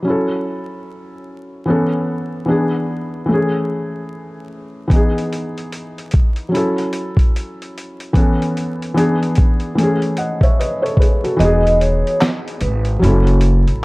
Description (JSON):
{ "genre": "lo-fi hip hop", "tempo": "74 BPM", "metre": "4/4", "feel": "swing 60% on 16ths", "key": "unclear", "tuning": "A4 = 441 Hz", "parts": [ { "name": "felt-muted upright piano", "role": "accompaniment", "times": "0.0-13.8 s", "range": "E3 to F#5", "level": "-18 LUFS", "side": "equal", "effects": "cassette tape, low-pass filter" }, { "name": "dusty soul sampler-style drum kit", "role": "drums", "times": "4.9-13.8 s", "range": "handclaps, hi-hat, kick drum, snare drum", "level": "-16 LUFS", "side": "equal", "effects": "none" }, { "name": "vibraphone with medium mallets", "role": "melody", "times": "11.4-12.8 s", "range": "B4 to D#5", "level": "-18 LUFS", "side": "right 1 dB", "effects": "low-pass filter" }, { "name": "upright bass", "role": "bass", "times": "11.4-13.8 s", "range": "E1 to A1", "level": "-14 LUFS", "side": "equal", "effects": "none" } ], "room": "light reverb, small room ambience", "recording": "dark, warm production, vinyl crackle", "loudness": "-14 LUFS", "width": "side -24 dB against mid", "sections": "0.0-11.4 A section; 11.4-13.8 B section", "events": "kick muted 11.4-13.8", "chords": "0.0 F#m7; 1.7 B9sus4; 2.5 E7; 3.3 Amaj7; 4.9 Emaj7; 6.5 F#m7; 8.1 B9sus4; 9.0 E7; 9.8 Amaj7; 11.4 Emaj7; 13.0 F#m7", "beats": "0.04 0.85 | 1.66 2.47 3.28 4.09 | 4.90 5.71 6.52 7.33 | 8.15 8.96 9.77 10.58 | 11.39 12.20 13.01 13.82" }